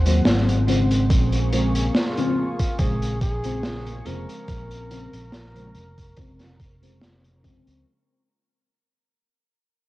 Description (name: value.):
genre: vaporwave.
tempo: 71 BPM.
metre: 4/4.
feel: swing 54% on 16ths.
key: Bb minor.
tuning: A4 = 440 Hz.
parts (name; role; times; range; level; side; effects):
lush unison pad; sustained chords; 0.0-7.8 s; Ab3 to Db6; -35 LUFS; left 1 dB; chorus.
fingered electric bass; bass; 0.0-7.8 s; F1 to Eb2; -24 LUFS; equal; tube saturation.
FM electric piano with soft pad layer; accompaniment; 0.1-7.8 s; Db3 to C4; -25 LUFS; left 1 dB; phaser, analog chorus, analog delay.
raw garage drum kit; drums; 0.1-7.8 s; hi-hat, snare drum; -26 LUFS; equal; none.
electronic kick drum; drums; 1.1-7.6 s; none; -23 LUFS; equal; none.
warm flugelhorn; melody; 2.0-7.0 s; F4 to Bb4; -36 LUFS; right 1 dB; cassette tape, tape echo.
room: light reverb.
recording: home recording on cassette.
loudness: -19 LUFS.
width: side -17 dB against mid.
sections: 0.0-7.9 A section.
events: fade-out 0.0-7.9.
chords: 0.0 Ab7; 1.1 Bbm7.